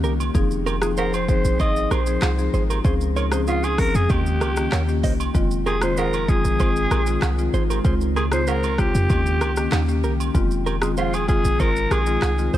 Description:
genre	afrobeats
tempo	96 BPM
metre	4/4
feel	straight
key	F minor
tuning	A4 = 440 Hz
part	marimba with medium mallets	accompaniment	0.0-12.6 s	Db3 to Ab4	-26 LUFS	left 5 dB	none
part	glassy FM pad	sustained chords	0.0-12.6 s	Db3 to G5	-31 LUFS	right 1 dB	ensemble chorus, built-in reverb
part	mellow electric guitar	riff	0.0-12.6 s	Eb4 to Eb5	-30 LUFS	right 4 dB	digital delay
part	warm 808-style bass	bass	0.0-12.6 s	F1 to F2	-23 LUFS	equal	none
part	afro-pop drum kit	drums	0.0-12.6 s	handclaps, hi-hat, kick drum, rim click, shaker	-24 LUFS	equal	none
part	agogo bells and woodblock	percussion	0.2-12.4 s	none	-33 LUFS	right 9 dB	none
part	growling alto saxophone	melody	1.0-12.5 s	F4 to Eb5	-25 LUFS	equal	digital delay
room	little or no reverb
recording	none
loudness	-18 LUFS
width	side -13 dB against mid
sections	0.0-12.6 A section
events	none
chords	0.3 Fm7; 1.6 Ab6; 2.8 Dbmaj7; 4.1 Eb7; 5.3 Fm7; 6.6 Ab6; 7.8 Dbmaj7; 9.1 Eb7; 10.3 Fm7; 11.6 Ab6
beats	| 0.35 0.97 1.60 2.22 | 2.85 3.47 4.10 4.72 | 5.35 5.97 6.60 7.22 | 7.85 8.47 9.10 9.72 | 10.35 10.97 11.60 12.22

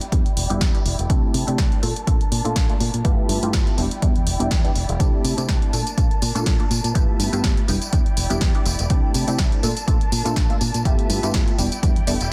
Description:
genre	filtered disco house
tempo	123 BPM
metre	4/4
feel	swing 55% on 16ths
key	unclear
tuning	A4 = 440 Hz
part	rich studio violin section	sustained chords	0.0-12.3 s	D4 to A5	-34 LUFS	equal	sidechain pumping, low-pass filter
part	punchy analog drum machine	drums	0.0-12.3 s	hi-hat, snare drum, tambourine	-29 LUFS	equal	sidechain pumping on hats, sidechain pumping on cymbals, sidechain pumping on perc
part	funky polysynth comp	accompaniment	0.1-12.1 s	G3 to A4	-29 LUFS	equal	chorus, phaser, sidechain pumping, low-pass filter
part	fingered electric bass	bass	0.1-12.3 s	E1 to C3	-27 LUFS	equal	tube saturation, sidechain pumping, low-pass filter
part	electronic kick drum	drums	0.1-11.9 s	none	-23 LUFS	equal	none
room	little or no reverb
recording	dense, heavily limited modern master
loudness	-20 LUFS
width	mono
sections	0.0-12.3 A section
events	filter sweep 0.0-12.3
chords	0.0 Em7; 1.1 C69; 1.8 Bbmaj7; 3.0 G13; 3.8 Em7; 5.0 C69; 5.7 Bbmaj7; 7.0 G13; 7.7 Em7; 8.9 C69; 9.6 Bbmaj7; 10.9 G13; 11.6 Em7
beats	0.12 0.61 | 1.10 1.59 2.07 2.56 | 3.05 3.54 4.03 4.51 | 5.00 5.49 5.98 6.46 | 6.95 7.44 7.93 8.41 | 8.90 9.39 9.88 10.37 | 10.85 11.34 11.83 12.32

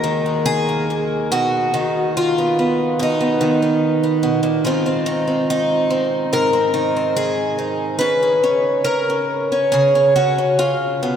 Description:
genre	folk, solo fingerstyle acoustic guitar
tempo	71 BPM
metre	4/4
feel	rubato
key	unclear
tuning	A4 = 441 Hz
part	picked twelve-string acoustic guitar	solo	0.0-11.2 s	Eb2 to Cb5	-16 LUFS	equal	none
room	wet cathedral reverb, RT60 6.4 s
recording	in a vast, echoing space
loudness	-16 LUFS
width	side -8 dB against mid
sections	0.0-11.2 A section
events	none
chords	0.0 Eb5; 1.3 B; 4.7 Ab; 8.0 Dbadd9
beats	0.47 | 1.32 2.17 3.01 3.84 | 4.66 5.50 6.34 7.17 | 8.01 8.87 9.74 10.61

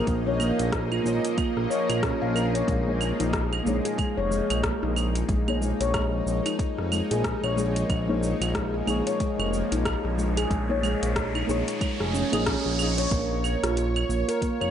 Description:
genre	organic downtempo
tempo	92 BPM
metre	4/4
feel	swing 59% on 16ths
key	Bb minor pentatonic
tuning	A4 = 442 Hz
part	deep mellow chord stab	accompaniment	0.0-12.4 s	Bb3 to Eb5	-32 LUFS	left 1 dB	chorus, phaser, sidechain pumping, digital delay
part	bowed-like drone	sustained chords	0.0-14.7 s	F3 to Eb5	-32 LUFS	equal	built-in reverb, phaser, sidechain pumping
part	handpan	arpeggios	0.0-14.7 s	Ab3 to F5	-28 LUFS	left 1 dB	digital delay
part	smooth gliding synth bass	bass	0.0-14.7 s	F1 to Bb1	-28 LUFS	equal	none
part	deep house drum kit	drums	0.1-14.7 s	cabasa, claves, hi-hat, rim click	-32 LUFS	right 1 dB	overdrive
part	electronic kick drum	drums	0.1-14.6 s	none	-30 LUFS	equal	overdrive
part	riser	sound effects	9.6-13.1 s	none	-35 LUFS	right 1 dB	none
room	moderate lush hall reverb, RT60 1.7 s, digital ambience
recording	nothing above 10.4 kHz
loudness	-23 LUFS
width	side -9 dB against mid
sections	0.0-13.1 A section; 13.1-14.7 A section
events	filter sweep on synth stab 0.0-13.1; riser 9.6-13.1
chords	0.0 Bbm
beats	| 0.07 0.72 1.38 2.03 | 2.68 3.33 3.98 4.64 | 5.29 5.94 6.59 7.25 | 7.90 8.55 9.20 9.85 | 10.51 11.16 11.81 12.46 | 13.12 13.77 14.42

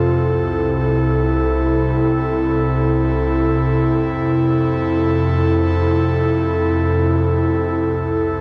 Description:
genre	hip hop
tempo	free time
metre	none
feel	none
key	C major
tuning	A4 = 438 Hz
part	airy breathy pad	solo	0.0-8.4 s	C2 to A4	-18 LUFS	equal	chorus, cassette tape
room	light reverb, digital ambience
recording	home recording on cassette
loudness	-18 LUFS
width	mono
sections	0.0-7.8 A section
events	none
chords	0.1 C6; 4.0 Fmaj7; 7.8 C6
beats	free time

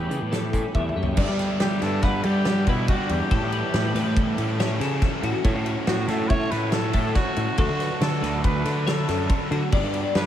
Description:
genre	math rock and midwest emo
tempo	140 BPM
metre	5/4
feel	straight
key	unclear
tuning	A4 = 440 Hz
part	growling trumpet	melody	0.0-10.3 s	E4 to C#5	-30 LUFS	equal	analog delay
part	twelve-string electric guitar	accompaniment	0.0-3.3 s	E2 to G4	-35 LUFS	right 4 dB	none
part	twelve-string electric guitar	arpeggios	0.0-10.2 s	F#4 to F#5	-31 LUFS	left 5 dB	ensemble chorus, analog delay
part	fuzz picked electric bass	bass	0.0-10.3 s	G1 to G3	-26 LUFS	equal	overdrive
part	loose indie drum kit	drums	0.1-10.3 s	crash cymbal, hi-hat, kick drum, ride cymbal, snare drum, toms	-26 LUFS	equal	none
part	overdriven electric guitar	riff	1.2-10.3 s	G2 to A4	-29 LUFS	right 1 dB	none
room	moderate huge ambient reverb, RT60 8.8 s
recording	dreamy mix soaked in reverb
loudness	-21 LUFS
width	side -10 dB against mid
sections	0.0-1.2 A section; 1.2-10.3 B section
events	drum fill 0.7-1.2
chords	0.0 A7; 1.2 G; 3.3 A7; 5.5 F#m/A; 7.6 D; 9.7 G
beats	0.31 0.74 | 1.17 1.60 2.03 2.46 2.89 | 3.31 3.74 4.17 4.60 5.02 | 5.45 5.88 6.31 6.74 7.16 | 7.59 8.02 8.45 8.87 9.30 | 9.73 10.15

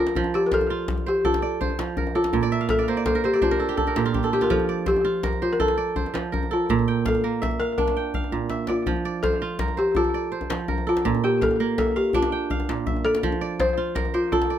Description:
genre	west african traditional, West African string and xylophone music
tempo	110 BPM (dotted quarters)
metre	12/8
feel	straight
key	unclear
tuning	A4 = 440 Hz
part	balafon	melody	0.0-14.6 s	F4 to C5	-24 LUFS	left 2 dB	slapback echo, plate reverb
part	kora	arpeggios	0.0-14.6 s	Bb2 to G5	-25 LUFS	right 5 dB	none
part	djembe	percussion	0.1-14.5 s	none	-29 LUFS	left 3 dB	none
room	light reverb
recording	none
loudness	-21 LUFS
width	side -10 dB against mid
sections	0.2-14.6 A section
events	kora fill 2.4-4.5; drum fill 8.3-8.9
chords	0.2 F; 2.3 Bb; 4.5 F; 6.7 Bb; 8.9 F; 11.0 Bb; 13.2 F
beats	| 0.15 0.70 1.24 1.79 | 2.33 2.88 3.42 3.96 | 4.51 5.05 5.60 6.14 | 6.69 7.23 7.78 8.32 | 8.87 9.41 9.96 10.50 | 11.05 11.59 12.14 12.68 | 13.23 13.77 14.32

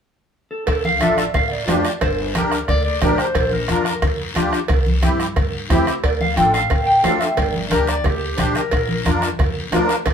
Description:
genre	latin, cumbia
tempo	179 BPM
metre	4/4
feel	straight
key	D minor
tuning	A4 = 441 Hz
part	mellow electric guitar	melody	0.5-3.0, 6.0-8.4 s	A4 to G5	-20 LUFS	equal	spring reverb
part	upright bass	bass	0.7-10.1 s	G1 to G2	-24 LUFS	equal	none
part	bombo	percussion	0.7-10.1 s	none	-23 LUFS	equal	none
part	cowbell and timbales	percussion	0.7-10.1 s	none	-25 LUFS	right 4 dB	none
part	guiro	percussion	0.7-10.1 s	none	-31 LUFS	left 4 dB	none
part	congas	percussion	0.8-10.1 s	none	-26 LUFS	equal	none
part	musette accordion	accompaniment	1.0-10.0 s	C4 to C5	-21 LUFS	left 1 dB	none
part	breathy clarinet	second line	2.7-4.2, 7.7-9.2 s	G4 to D5	-23 LUFS	left 3 dB	none
room	moderate studio reverb, RT60 0.5 s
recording	band playing live in one room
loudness	-16 LUFS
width	side -7 dB against mid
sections	0.7-10.1 A section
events	none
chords	0.0 N.C.; 0.7 Dm; 2.0 Gm; 3.4 Bb; 4.7 C; 6.0 Dm; 7.4 Gm; 8.7 Bb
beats	0.01 0.34 | 0.68 1.01 1.34 1.68 | 2.02 2.35 2.69 3.02 | 3.36 3.69 4.03 4.36 | 4.70 5.03 5.37 5.70 | 6.04 6.37 6.71 7.04 | 7.38 7.71 8.05 8.38 | 8.72 9.05 9.39 9.72 | 10.06

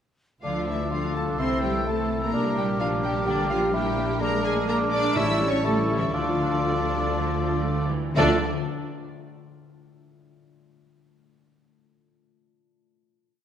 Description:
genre	classical, dramatic, fast romantic movement for symphony orchestra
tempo	116-129 BPM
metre	4/4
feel	straight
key	D minor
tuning	A4 = 440 Hz
part	rich symphonic violin section	melody	0.4-8.5 s	D5 to E6	-33 LUFS	left 3 dB	none
part	concert flute	second line	0.4-8.5 s	A5 to E6	-32 LUFS	left 1 dB	none
part	mellow clarinet	second line	0.4-8.4 s	E4 to Ab4	-34 LUFS	left 1 dB	none
part	mellow oboe	second line	0.4-8.4 s	A4 to Bb4	-34 LUFS	right 2 dB	none
part	rich symphonic violin section	second line	0.4-8.5 s	D4 to E5	-33 LUFS	left 2 dB	none
part	rich symphonic viola section	accompaniment	0.4-8.5 s	C3 to F4	-34 LUFS	equal	none
part	warm bassoon	accompaniment	0.4-8.4 s	A3 to G4	-30 LUFS	right 3 dB	none
part	dark French horn section	sustained chords	0.4-8.4 s	F3 to D4	-34 LUFS	left 5 dB	none
part	concert harp	arpeggios	0.4-8.5 s	A2 to D5	-34 LUFS	left 8 dB	none
part	rich symphonic cello section	bass	0.4-8.5 s	D3 to E4	-30 LUFS	right 2 dB	none
part	rich symphonic double bass section	bass	0.4-8.5 s	A1 to D2	-31 LUFS	right 2 dB	none
part	timpani	percussion	5.2-8.4 s	A2 to D3	-32 LUFS	equal	none
room	wet scoring stage reverb, RT60 2.0 s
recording	none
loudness	-22 LUFS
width	side -9 dB against mid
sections	0.4-8.2 A section; 8.2-10.2 final chord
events	slowing down 3.3-8.2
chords	0.4 Dm; 1.4 Am/C; 2.3 Gm/Bb; 4.2 Bb7; 5.2 A7; 6.1 Dm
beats	| 0.43 0.92 1.39 1.86 | 2.34 2.81 3.27 3.74 | 4.21 4.69 5.16 5.64 | 6.14 6.64 7.15 7.66 | 8.17

